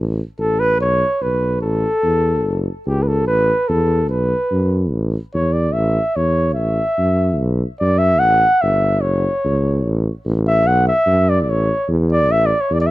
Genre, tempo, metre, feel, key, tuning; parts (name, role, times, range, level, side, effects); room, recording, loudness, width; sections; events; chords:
balkan folk; 146 BPM; 2/4; straight; A mixolydian; A4 = 441 Hz
dark tuba; bass; 0.0-12.9 s; F#1 to F#2; -18 LUFS; equal
mellow flugelhorn; melody; 0.4-12.9 s; G4 to F#5; -17 LUFS; equal
small room reverb; dry, close 1970s-style studio recording; -15 LUFS; side -17 dB against mid
0.0-12.9 A section
flugelhorn solo 0.0-12.9
0.0 Asus2; 0.8 Bsus2; 1.6 A5; 2.5 F#5; 3.3 A5; 4.1 B5; 4.9 A5; 7.4 B5; 8.2 A5; 9.0 F#5; 9.9 A5; 10.7 B5; 11.5 A5